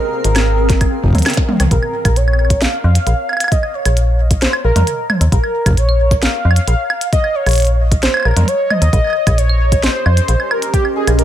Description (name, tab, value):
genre	IDM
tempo	133 BPM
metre	4/4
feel	straight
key	Bb dorian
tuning	A4 = 440 Hz
part	warm velvety synth lead	melody	0.0-11.2 s	G4 to F5	-18 LUFS	equal	chorus, dub echo
part	granular cloud pad	sustained chords	0.0-1.7, 10.0-11.2 s	C4 to F5	-24 LUFS	right 1 dB	built-in reverb, sidechain pumping
part	metallic FM bass	bass	0.2-11.2 s	Ab1 to F2	-13 LUFS	equal	none
part	glitchy drum kit	drums	0.2-11.2 s	claves, hi-hat, snare drum, toms	-19 LUFS	right 1 dB	overdrive, small room ambience, analog delay
part	electronic kick drum	drums	0.7-10.8 s	none	-15 LUFS	equal	overdrive, small room ambience
room	light reverb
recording	echo-heavy mix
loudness	-12 LUFS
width	side -11 dB against mid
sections	0.0-1.7 A section; 1.7-11.2 A section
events	drum fill 1.4-1.7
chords	0.0 Ab69; 1.7 Bbm; 8.9 Eb7/Bb